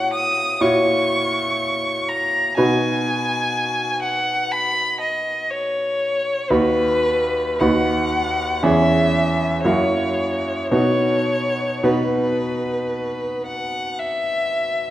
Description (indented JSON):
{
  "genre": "classical, romantic duo for violin and grand piano",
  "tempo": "53-63 BPM",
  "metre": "4/4",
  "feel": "rubato",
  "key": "B major",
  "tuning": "A4 = 442 Hz",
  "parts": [
    { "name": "rich violin", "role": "melody", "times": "0.0-14.9 s", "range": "B4 to D#6", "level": "-21 LUFS", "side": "left 1 dB", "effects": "none" },
    { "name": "bright concert grand piano", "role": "accompaniment", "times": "0.0-14.9 s", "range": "D#2 to C#5", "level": "-21 LUFS", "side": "right 1 dB", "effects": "none" }
  ],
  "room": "wet recital hall reverb, RT60 1.7 s",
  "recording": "none",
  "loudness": "-18 LUFS",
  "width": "side -13 dB against mid",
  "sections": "0.0-14.9 A section",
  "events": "none",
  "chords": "0.0 F#7/A#; 2.6 B; 6.5 B/D#; 8.6 C#m/E; 9.7 F#7; 10.7 B"
}